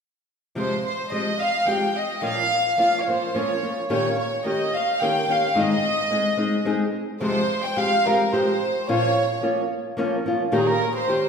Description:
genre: mexican folk.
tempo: 108 BPM.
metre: 3/4.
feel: straight.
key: F minor.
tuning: A4 = 440 Hz.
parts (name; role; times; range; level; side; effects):
warm symphonic violin section; melody; 0.6-11.3 s; Ab4 to G5; -22 LUFS; equal; none.
nylon-string guitar; accompaniment; 0.6-11.3 s; F2 to Ab4; -23 LUFS; left 1 dB; none.
room: wet scoring stage reverb, RT60 1.7 s.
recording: recorded in a church or concert hall.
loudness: -20 LUFS.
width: side -6 dB against mid.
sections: 0.5-7.2 A section; 7.2-11.3 B section.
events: none.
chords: 0.5 Fmadd9; 2.2 Bbm; 3.9 Eb7/Bb; 5.5 Ab; 7.2 Fmadd9; 8.9 Bbm; 10.5 Eb7/Bb.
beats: | 0.55 1.11 1.67 | 2.23 2.78 3.34 | 3.89 4.44 4.99 | 5.54 6.10 6.66 | 7.22 7.78 8.33 | 8.88 9.43 9.97 | 10.52 11.07.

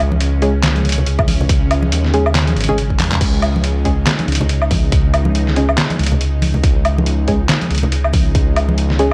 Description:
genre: deep dubstep.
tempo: 140 BPM.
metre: 4/4.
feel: swing 57% on 16ths, half-time.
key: unclear.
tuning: A4 = 440 Hz.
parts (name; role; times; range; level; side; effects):
bowed-like drone; sustained chords; 0.0-9.1 s; C#3 to D#4; -27 LUFS; equal; built-in reverb, phaser, vintage 12-bit sampler grit.
dark detuned saw bass; bass; 0.0-9.1 s; G#1 to E2; -19 LUFS; equal; transformer saturation.
congas; percussion; 0.1-8.8 s; none; -26 LUFS; equal; none.
trip hop sampler-style drum kit; drums; 0.2-9.1 s; crash cymbal, handclaps, hi-hat, snare drum, woodblock; -22 LUFS; equal; none.
filtered dub chord stab; stabs; 0.4-9.1 s; G#3 to G#4; -23 LUFS; equal; chorus, dub echo.
electronic kick drum; drums; 1.2-8.4 s; none; -19 LUFS; equal; none.
room: little or no reverb.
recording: dry, gritty hardware recording.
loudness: -15 LUFS.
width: mono.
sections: 0.0-3.2 A section; 3.2-9.1 A section.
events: drop 0.0-3.2, 3.2-9.1; drum fill 3.0.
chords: 0.0 C#5.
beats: 0.21 0.64 1.06 | 1.49 1.92 2.35 2.78 | 3.21 3.64 4.07 4.49 | 4.92 5.35 5.78 6.21 | 6.64 7.07 7.49 7.92 | 8.35 8.78.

